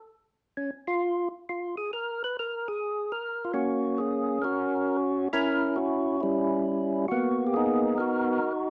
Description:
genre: jazz.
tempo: 135 BPM.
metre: 4/4.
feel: swing 68% on 8ths.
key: Bb minor.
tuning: A4 = 441 Hz.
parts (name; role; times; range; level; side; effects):
percussive tonewheel organ; solo; 0.6-8.7 s; G3 to Cb5; -28 LUFS; equal; slow rotary speaker.
room: moderate club reverb, RT60 0.7 s.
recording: nothing above 10.3 kHz.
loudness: -28 LUFS.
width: mono.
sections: 0.0-3.7 A section; 3.7-8.7 B section.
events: none.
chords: 0.0 N.C.; 2.8 Bbm7; 3.7 Gb9/Bb; 5.5 Gdim7; 7.2 Abm9.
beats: | 0.12 0.56 1.01 1.46 | 1.90 2.35 2.79 3.23 | 3.68 4.12 4.57 5.01 | 5.46 5.90 6.35 6.79 | 7.24 7.68 8.12 8.57.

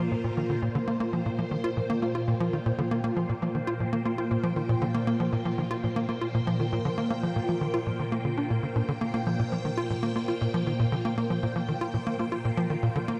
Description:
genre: ambient, sequencer-driven space music.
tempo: 118 BPM.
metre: 4/4.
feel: straight.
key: unclear.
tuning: A4 = 439 Hz.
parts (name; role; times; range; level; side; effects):
phased string machine; sustained chords; 0.0-13.2 s; Bb2 to G5; -33 LUFS; equal; ensemble chorus, phaser.
tight sequencer bass; riff; 0.0-13.2 s; Bb2 to F4; -30 LUFS; equal; subtle chorus, tape echo.
room: wet huge ambient reverb, RT60 7.8 s.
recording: cassette tape.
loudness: -28 LUFS.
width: mono.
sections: 0.0-13.2 A section.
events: none.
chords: 0.0 Bbsus2.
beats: 0.12 | 0.62 1.13 1.64 2.15 | 2.66 3.17 3.67 4.18 | 4.69 5.20 5.71 6.22 | 6.72 7.23 7.74 8.25 | 8.76 9.27 9.78 10.28 | 10.79 11.30 11.81 12.32 | 12.83.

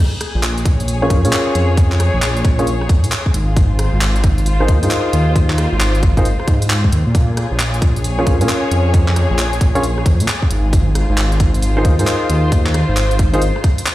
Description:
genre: UK garage, two-step garage.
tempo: 134 BPM.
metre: 4/4.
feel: swing 64% on 16ths.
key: Bb minor.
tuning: A4 = 438 Hz.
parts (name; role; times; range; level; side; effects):
muted studio string section; texture; 0.0-13.9 s; F4 to Db5; -24 LUFS; left 2 dB; sidechain pumping.
garage drum kit; drums; 0.2-13.9 s; handclaps, hi-hat, rim click; -23 LUFS; equal; none.
dark detuned saw bass; bass; 0.4-13.5 s; Ab1 to Bb2; -16 LUFS; equal; none.
electronic kick drum; drums; 0.7-13.8 s; none; -16 LUFS; equal; none.
warm grand piano; stabs; 1.0-13.4 s; Db4 to Db5; -20 LUFS; equal; low-pass filter, ping-pong delay.
room: light reverb.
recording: played on a big sound system in a bare room, stone room reverb.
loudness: -13 LUFS.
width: side -16 dB against mid.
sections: 0.0-13.9 A section.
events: filter sweep on grand piano 0.0-13.9.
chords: 0.0 Bbm7; 3.3 Ab69; 7.1 Bbm7; 10.5 Ab69.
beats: 0.43 0.88 1.33 | 1.77 2.22 2.67 3.12 | 3.56 4.01 4.46 4.91 | 5.36 5.80 6.25 6.70 | 7.15 7.59 8.04 8.49 | 8.94 9.39 9.83 10.28 | 10.73 11.18 11.62 12.07 | 12.52 12.97 13.42 13.86.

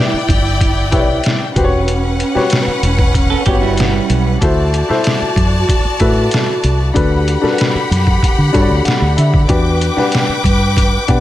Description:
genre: lush 1970s-style soul.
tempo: 95 BPM.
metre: 4/4.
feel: straight.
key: E minor.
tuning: A4 = 439 Hz.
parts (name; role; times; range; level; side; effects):
warm symphonic string section; second line; 0.0-11.2 s; C#4 to D6; -19 LUFS; equal; none.
warm baby grand piano; accompaniment; 0.0-11.2 s; D4 to B5; -18 LUFS; left 3 dB; none.
fingered electric bass; bass; 0.1-11.2 s; E1 to D3; -16 LUFS; equal; none.
trip hop sampler-style drum kit; drums; 0.3-11.2 s; hi-hat, kick drum, snare drum; -16 LUFS; equal; none.
semi-hollow electric guitar; riff; 3.3-4.4 s; G3 to A4; -19 LUFS; right 10 dB; none.
room: light reverb.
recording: none.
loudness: -11 LUFS.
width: side -14 dB against mid.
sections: 0.0-11.2 A section.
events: grand piano fill 8.2-9.5.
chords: 0.0 Em7; 1.6 Em69; 4.4 D7; 7.0 Gmaj7/D; 9.5 Em7.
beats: 0.61 1.25 | 1.88 2.52 3.15 3.78 | 4.42 5.05 5.69 6.32 | 6.96 7.59 8.22 8.86 | 9.49 10.13 10.76.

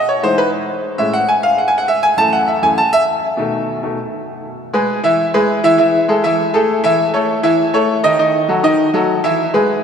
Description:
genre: latin.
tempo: 200 BPM.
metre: 4/4.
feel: straight.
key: E major.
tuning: A4 = 442 Hz.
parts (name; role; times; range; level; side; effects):
bright grand piano; solo; 0.0-9.8 s; F#2 to A5; -13 LUFS; equal; none.
room: wet cathedral reverb, RT60 4.5 s.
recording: recorded in a church or concert hall.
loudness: -12 LUFS.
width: side -7 dB against mid.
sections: 0.0-4.6 A section; 4.6-9.8 B section.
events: grand piano solo 0.0-4.6.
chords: 0.0 Emaj7; 1.0 Amaj7; 2.2 F#m7; 3.4 B7; 4.6 E; 5.8 A5; 7.0 A; 8.2 D#dim.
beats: 0.08 0.38 0.68 | 0.98 1.28 1.58 1.88 | 2.18 2.48 2.78 3.08 | 3.38 3.68 3.98 4.28 | 4.58 4.88 5.18 5.48 | 5.78 6.08 6.38 6.68 | 6.98 7.28 7.58 7.88 | 8.18 8.48 8.79 9.09 | 9.39 9.69.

